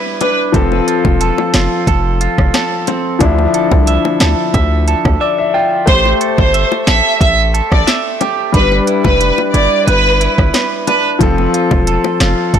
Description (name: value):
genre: dancehall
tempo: 90 BPM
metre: 4/4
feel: straight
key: A minor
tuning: A4 = 441 Hz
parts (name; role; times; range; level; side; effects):
- clear concert grand piano; accompaniment; 0.0-12.6 s; F3 to G5; -17 LUFS; left 6 dB; none
- clean electric guitar; arpeggios; 0.0-12.6 s; D3 to E5; -19 LUFS; right 8 dB; wide subtle chorus
- warm studio violin section; melody; 0.2-0.4, 5.9-11.0 s; B4 to E5; -15 LUFS; right 1 dB; ping-pong delay
- island pop drum kit; drums; 0.2-12.6 s; hi-hat, kick drum, rim click, snare drum; -16 LUFS; equal; overdrive
- bongos; percussion; 0.2-12.2 s; none; -23 LUFS; left 10 dB; none
- hard-hitting 808-style bass; bass; 0.5-12.6 s; E1 to D2; -14 LUFS; equal; none
room: light reverb, small room ambience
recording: blown-out, overdriven recording, overdrive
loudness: -10 LUFS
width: side -8 dB against mid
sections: 0.0-12.6 A section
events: grand piano fill 4.9-5.9; silent gap 5.2-5.9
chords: 0.0 Em7; 0.5 F; 3.2 Dmadd9; 5.9 Am7; 8.5 Em7; 11.2 F